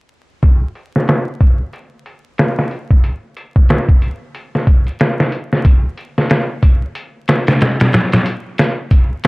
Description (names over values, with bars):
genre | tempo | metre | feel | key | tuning
trip hop | 92 BPM | 4/4 | swing 59% on 16ths | none | none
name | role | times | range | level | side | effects
trip hop sampler-style drum kit | drums | 0.4-9.3 s | hi-hat, kick drum, snare drum | -12 LUFS | equal | low-pass filter on hats, low-pass filter on kick, low-pass filter on snare, low-pass filter on room
room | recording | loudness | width
little or no reverb | dry, gritty hardware recording, vinyl crackle | -12 LUFS | side -25 dB against mid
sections
0.4-9.3 A section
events
none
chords
none